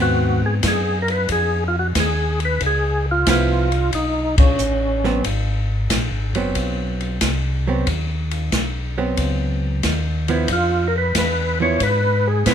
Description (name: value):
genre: soul jazz organ trio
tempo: 91 BPM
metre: 4/4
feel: swing 69% on 8ths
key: unclear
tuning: A4 = 440 Hz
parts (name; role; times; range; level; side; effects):
- percussive tonewheel organ; melody; 0.0-5.2, 10.5-12.5 s; Db4 to Db5; -20 LUFS; equal; slow rotary speaker, overdrive, chorus vibrato
- archtop guitar, miked and amplified; accompaniment; 0.0-12.5 s; F3 to E4; -24 LUFS; right 3 dB; none
- mellow tonewheel organ; bass; 0.0-12.5 s; Gb1 to Bb2; -21 LUFS; equal; overdrive, chorus vibrato, stopped rotary speaker
- open jazz drum kit; drums; 0.6-12.5 s; hi-hat, kick drum, ride cymbal, snare drum; -23 LUFS; left 1 dB; none
room: light reverb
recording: minimal, uncompressed stereo recording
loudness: -17 LUFS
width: side -8 dB against mid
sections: 0.0-12.5 A section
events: band accent 4.3-4.6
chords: 0.0 Ab7#9; 2.6 Db7#9; 5.2 Ab7#9; 10.5 Db7#9 (rootless)